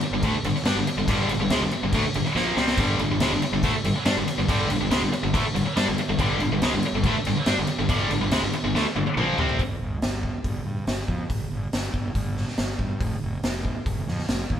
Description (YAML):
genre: hard rock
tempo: 141 BPM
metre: 4/4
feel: straight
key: G minor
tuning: A4 = 440 Hz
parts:
  - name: tight distorted guitar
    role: riff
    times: 0.0-9.6 s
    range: G2 to D4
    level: -23 LUFS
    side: left 1 dB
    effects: distortion
  - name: fuzz fingered electric bass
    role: bass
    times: 0.0-14.6 s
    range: F1 to G2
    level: -30 LUFS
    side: equal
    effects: overdrive
  - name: raw garage drum kit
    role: drums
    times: 0.0-14.6 s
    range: crash cymbal, hi-hat, kick drum, snare drum, toms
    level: -26 LUFS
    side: equal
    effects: none
room: moderate stone room reverb, RT60 1.2 s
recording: band playing live in one room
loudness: -22 LUFS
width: side -9 dB against mid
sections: 0.0-9.6 A section; 9.6-14.6 B section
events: drum fill 2.4-2.8, 8.7-9.6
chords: 0.0 Gm; 9.6 N.C.